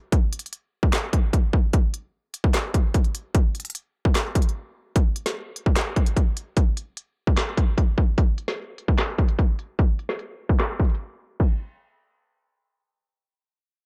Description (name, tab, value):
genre	hip hop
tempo	149 BPM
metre	4/4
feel	half-time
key	none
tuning	none
part	trap drum kit	drums	0.1-11.5 s	crash cymbal, handclaps, hi-hat, kick drum, snare drum	-22 LUFS	equal	none
room	little or no reverb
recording	dark, warm production, low-pass filter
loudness	-24 LUFS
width	mono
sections	0.0-5.0 A section; 5.0-11.4 B section; 11.4-13.9 C section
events	break 4.6-5.0, 11.0-11.4; filter sweep 5.0-11.4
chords	none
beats	| 0.12 0.53 0.93 1.33 | 1.74 2.14 2.54 2.94 | 3.35 3.75 4.15 4.55 | 4.96 5.36 5.76 6.17 | 6.57 6.97 7.37 7.78 | 8.18 8.58 8.98 9.39 | 9.79 10.19 10.59 11.00 | 11.40